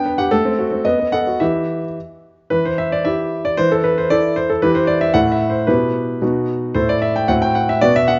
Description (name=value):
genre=classical-period piano sonatina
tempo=113 BPM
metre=2/4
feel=straight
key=E minor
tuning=A4 = 439 Hz
part: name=clear grand piano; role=solo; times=0.0-8.2 s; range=A2 to G5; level=-17 LUFS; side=equal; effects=none
room=moderate recital hall reverb, RT60 1.5 s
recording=nothing above 7.5 kHz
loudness=-17 LUFS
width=mono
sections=0.0-2.5 A section; 2.5-8.2 B section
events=none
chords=0.3 F#dim/A; 0.9 B7; 1.4 Em; 3.6 A5/E; 4.6 Em; 5.2 A5; 5.7 Em/B; 6.2 B; 6.8 A5; 7.3 F#dim/A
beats=| 0.32 0.85 | 1.41 1.96 | 2.52 3.06 | 3.59 4.11 | 4.63 5.16 | 5.69 6.22 | 6.76 7.29 | 7.82